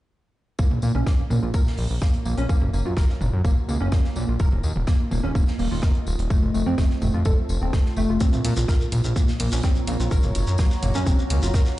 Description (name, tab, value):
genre	melodic techno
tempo	126 BPM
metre	4/4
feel	straight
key	Bb harmonic minor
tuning	A4 = 440 Hz
part	woody wave-folded pluck	arpeggios	0.6-11.6 s	A3 to Bb4	-28 LUFS	right 1 dB	ensemble chorus, sidechain pumping, dub echo
part	fat analog bass	bass	0.6-11.6 s	Eb1 to Bb2	-24 LUFS	equal	sidechain pumping
part	electronic kick drum	drums	0.6-11.6 s	none	-20 LUFS	equal	none
part	modern studio drum kit	drums	0.6-11.8 s	hi-hat, snare drum, tambourine	-39 LUFS	left 1 dB	sidechain pumping on hats, high-pass filter on hats, high-pass filter on snare, sidechain pumping on perc, high-pass filter on perc, high-pass filter on room
part	warbly tape-like pad	texture	1.2-11.8 s	F4 to Bb5	-37 LUFS	right 2 dB	chorus, built-in reverb, sidechain pumping
part	punchy analog drum machine	drums	0.7-11.4 s	hi-hat, toms	-30 LUFS	equal	overdrive
part	shekere	percussion	8.2-11.8 s	none	-36 LUFS	left 1 dB	none
room	little or no reverb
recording	played on a big sound system in a bare room, large studio reverb, nothing above 10.7 kHz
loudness	-20 LUFS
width	side -16 dB against mid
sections	0.6-11.8 A section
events	fade-in on ambient pad 0.6-11.8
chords	0.6 Bbm; 2.5 Gb; 4.4 Ebsus2; 6.3 F; 8.2 Bbm; 10.1 Gb